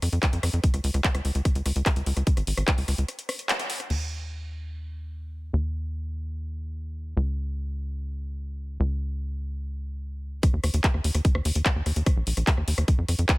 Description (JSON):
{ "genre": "psychedelic trance", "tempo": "147 BPM", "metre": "4/4", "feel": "straight", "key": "unclear", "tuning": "A4 = 440 Hz", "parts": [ { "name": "tight sequencer bass", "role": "bass", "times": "0.0-13.3 s", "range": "Ab1 to F2", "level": "-27 LUFS", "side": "equal", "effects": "none" }, { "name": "techno drum kit", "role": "drums", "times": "0.0-4.0, 10.4-13.4 s", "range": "crash cymbal, handclaps, hi-hat, rim click", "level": "-29 LUFS", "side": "equal", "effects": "none" }, { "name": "electronic kick drum", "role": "drums", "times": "0.2-2.8, 10.4-13.4 s", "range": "none", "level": "-22 LUFS", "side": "equal", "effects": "none" } ], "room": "little or no reverb", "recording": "none", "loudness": "-24 LUFS", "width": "side -21 dB against mid", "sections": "0.0-3.9 A section; 3.9-10.4 B section; 10.4-13.4 C section", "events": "break 3.1-3.9; band accent 3.5; drop 10.4-13.4", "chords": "none" }